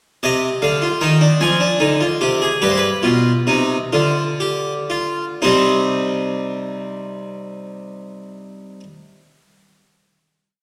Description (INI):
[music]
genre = classical, baroque-style 3-part fugue for harpsichord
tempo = 37-53 BPM (dotted quarters)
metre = 6/8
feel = straight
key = C minor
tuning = A4 = 439 Hz
[part]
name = harpsichord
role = solo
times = 0.2-8.8 s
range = G2 to Ab5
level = -19 LUFS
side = equal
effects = none
[sound]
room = wet scoring stage reverb, RT60 1.9 s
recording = recorded in a church or concert hall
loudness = -18 LUFS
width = mono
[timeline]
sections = 0.2-5.4 exposition; 5.4-8.7 final chord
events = slowing down 0.2-7.1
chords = 0.2 Cm; 1.4 Fm; 2.6 G7; 5.4 Cm